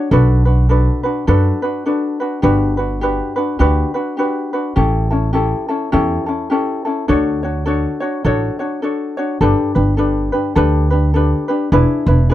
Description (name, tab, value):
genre	Hawaiian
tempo	103 BPM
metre	4/4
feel	swing 60% on 8ths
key	D major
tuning	A4 = 441 Hz
part	ukulele	accompaniment	0.0-12.3 s	C#4 to C#5	-17 LUFS	left 1 dB	none
part	upright bass	bass	0.1-12.3 s	E1 to F#2	-15 LUFS	right 1 dB	none
room	little or no reverb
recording	dry, close 1970s-style studio recording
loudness	-14 LUFS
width	side -13 dB against mid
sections	0.0-9.4 A section; 9.4-12.3 B section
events	none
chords	0.1 Bm7; 2.4 Gmaj7; 4.8 A7; 7.1 Dmaj7; 9.4 Gadd9; 11.7 E7